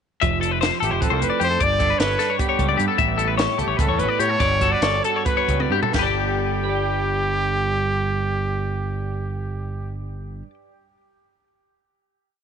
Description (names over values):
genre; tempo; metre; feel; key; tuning
math rock and midwest emo; 257-304 BPM (eighths); 7/8; straight; G lydian; A4 = 440 Hz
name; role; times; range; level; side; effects
twelve-string electric guitar; accompaniment; 0.2-10.8 s; G2 to G5; -28 LUFS; right 14 dB; warbly pitch drift
twelve-string electric guitar; arpeggios; 0.2-10.5 s; G4 to G5; -23 LUFS; left 12 dB; tape echo
growling fingered electric bass; bass; 0.2-10.4 s; F1 to A2; -26 LUFS; right 1 dB; overdrive
compact cocktail drum kit; drums; 0.2-6.1 s; hi-hat, kick drum, ride cymbal, snare drum, toms; -26 LUFS; right 1 dB; none
clear trumpet; melody; 0.8-10.0 s; G4 to D5; -24 LUFS; right 1 dB; none
room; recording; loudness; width
light reverb, small room ambience; 1960s-style stereo with parts hard left and right, nothing above 10.3 kHz; -19 LUFS; side -7 dB against mid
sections
0.2-5.9 A section; 5.9-9.2 final chord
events
slowing down 3.0-5.9; drum fill 5.6-5.9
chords
0.2 Fmaj9; 1.6 Gadd9; 3.0 A9; 4.4 Gmaj9; 5.9 Gadd9